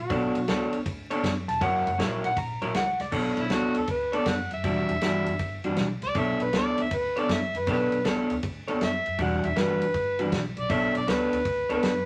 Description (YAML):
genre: electric blues shuffle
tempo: 158 BPM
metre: 4/4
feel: swing 66% on 8ths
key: B minor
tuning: A4 = 438 Hz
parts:
  - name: electric slide guitar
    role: second line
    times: 0.0-3.1 s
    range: F#4 to A#5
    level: -30 LUFS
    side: equal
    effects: none
  - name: upright bass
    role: bass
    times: 0.0-12.0 s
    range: E1 to F#2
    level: -38 LUFS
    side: equal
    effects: none
  - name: electric guitar through a small old amp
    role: riff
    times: 0.1-11.9 s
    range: E3 to C#5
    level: -30 LUFS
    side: equal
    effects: none
  - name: natural country drum kit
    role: drums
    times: 0.1-11.9 s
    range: crash cymbal, kick drum, ride cymbal, snare drum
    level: -34 LUFS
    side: equal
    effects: none
  - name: overdriven harmonica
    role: melody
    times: 3.4-12.1 s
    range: E4 to F#5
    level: -30 LUFS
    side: equal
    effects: none
room: moderate studio reverb, RT60 0.6 s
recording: vinyl crackle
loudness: -27 LUFS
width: mono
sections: 0.0-3.1 A section; 3.1-12.1 A section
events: electric slide guitar solo 0.0-3.1; harmonica solo 3.1-12.1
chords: 0.1 Bm9; 1.6 F#7; 3.1 Bm9; 4.6 Em9; 6.2 Bm9; 9.2 Em9; 10.7 Bm9